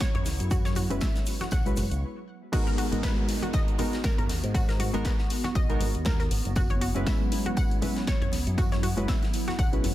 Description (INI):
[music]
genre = deep house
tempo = 119 BPM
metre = 4/4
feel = swing 56% on 16ths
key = G# minor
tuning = A4 = 439 Hz
[part]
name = hollow soft pad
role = sustained chords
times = 0.0-9.9 s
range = F#3 to F#4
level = -36 LUFS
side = equal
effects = ensemble chorus, sidechain pumping
[part]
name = analog pluck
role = arpeggios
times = 0.0-9.7 s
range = F#4 to F#5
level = -36 LUFS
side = left 1 dB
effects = chorus, sidechain pumping, digital delay
[part]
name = electronic kick drum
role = drums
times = 0.0-9.7 s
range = none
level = -27 LUFS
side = equal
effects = none
[part]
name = house drum kit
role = drums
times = 0.0-9.9 s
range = crash cymbal, hi-hat, snare drum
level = -36 LUFS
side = left 1 dB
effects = none
[part]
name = tambourine and snare drum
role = drums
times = 0.0-9.9 s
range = none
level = -44 LUFS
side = equal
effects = high-pass filter on snare, high-pass filter on perc, high-pass filter on room
[part]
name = egg shaker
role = percussion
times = 0.0-2.0 s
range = none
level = -46 LUFS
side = right 4 dB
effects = none
[part]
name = string machine, violins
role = texture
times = 0.0-2.0 s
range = C#5 to C#6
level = -49 LUFS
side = equal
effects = ensemble chorus
[part]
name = fingered electric bass with an envelope filter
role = bass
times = 0.1-9.9 s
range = F#1 to G#2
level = -30 LUFS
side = equal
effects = sidechain pumping
[part]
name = congas and bongos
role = percussion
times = 0.3-9.9 s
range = none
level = -40 LUFS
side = left 3 dB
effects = none
[part]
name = warm analog keys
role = stabs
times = 0.9-9.9 s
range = G#3 to B4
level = -32 LUFS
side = equal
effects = chorus, sidechain pumping, digital delay
[part]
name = downlifter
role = sound effects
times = 2.5-6.6 s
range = none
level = -42 LUFS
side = equal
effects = none
[sound]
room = small room reverb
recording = dense, heavily limited modern master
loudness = -24 LUFS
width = side -14 dB against mid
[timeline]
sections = 0.0-2.5 A section; 2.5-9.9 B section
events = stop 2.0-2.5; drop 2.5-9.9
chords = 0.0 F#7sus4; 2.5 G#m9; 6.6 F#7sus4